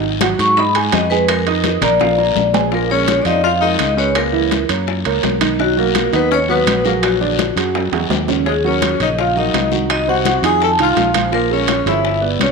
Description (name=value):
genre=Afro-Cuban jazz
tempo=167 BPM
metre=4/4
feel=straight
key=Bb minor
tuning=A4 = 441 Hz
part: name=warm concert grand piano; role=accompaniment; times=0.0-12.5 s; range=C3 to Eb6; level=-20 LUFS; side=right 9 dB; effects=none
part: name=fingered electric bass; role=bass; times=0.0-12.5 s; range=G1 to Ab2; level=-22 LUFS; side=left 1 dB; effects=none
part: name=bongos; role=percussion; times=0.0-12.5 s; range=none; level=-28 LUFS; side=left 14 dB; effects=none
part: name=congas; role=percussion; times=0.0-12.5 s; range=none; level=-24 LUFS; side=left 15 dB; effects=none
part: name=guiro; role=percussion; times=0.2-12.5 s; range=none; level=-27 LUFS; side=left 14 dB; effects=none
part: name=timbales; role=percussion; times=0.2-12.5 s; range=none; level=-23 LUFS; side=right 10 dB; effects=none
part: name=vibraphone with medium mallets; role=melody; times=0.4-12.5 s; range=F#4 to Db6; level=-18 LUFS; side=left 1 dB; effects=none
part: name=breathy tenor saxophone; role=second line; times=2.7-12.5 s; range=F#3 to A4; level=-21 LUFS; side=left 8 dB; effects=none
room=wet echo chamber reverb, RT60 1.9 s, small room ambience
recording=1960s-style stereo with parts hard left and right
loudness=-13 LUFS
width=side -4 dB against mid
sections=0.0-2.7 A section; 2.7-12.5 B section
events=vibraphone solo 0.0-2.7; drum fill 2.0-2.7, 7.7-8.5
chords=0.0 Ab5; 1.3 Bb7sus4; 2.0 Bb7; 2.7 Bbm7; 4.2 Dbm7; 4.9 Gb; 5.6 Bmaj7; 7.0 Bb7alt; 8.5 Ebm7; 9.9 Cdim; 10.6 F5; 11.3 Bbm7